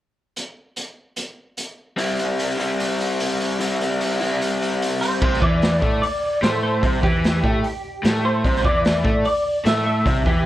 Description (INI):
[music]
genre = indie rock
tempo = 148 BPM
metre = 4/4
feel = straight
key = C major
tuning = A4 = 440 Hz
[part]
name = raw garage drum kit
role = drums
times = 0.4-10.4 s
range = crash cymbal, hi-hat, kick drum, snare drum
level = -23 LUFS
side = equal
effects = none
[part]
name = raw garage guitar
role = riff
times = 2.0-10.5 s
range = C3 to E4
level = -22 LUFS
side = left 1 dB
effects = overdrive
[part]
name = electric guitar through a small old amp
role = melody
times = 5.0-10.5 s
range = G4 to E5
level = -22 LUFS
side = right 1 dB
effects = ensemble chorus
[part]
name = fuzz fingered electric bass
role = bass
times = 5.2-10.5 s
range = C2 to A2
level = -24 LUFS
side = equal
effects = overdrive
[sound]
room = moderate studio reverb, RT60 0.5 s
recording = worn, warbling old tape, cassette tape, warbly pitch drift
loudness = -18 LUFS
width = side -14 dB against mid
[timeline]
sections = 0.4-2.0 A section; 2.0-5.2 B section; 5.2-10.5 C section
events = none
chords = 0.4 N.C.; 2.0 C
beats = | 0.36 0.76 1.17 1.57 | 1.98 2.38 2.79 3.19 | 3.60 4.00 4.41 4.81 | 5.21 5.62 6.02 6.43 | 6.83 7.23 7.64 8.04 | 8.44 8.85 9.25 9.65 | 10.06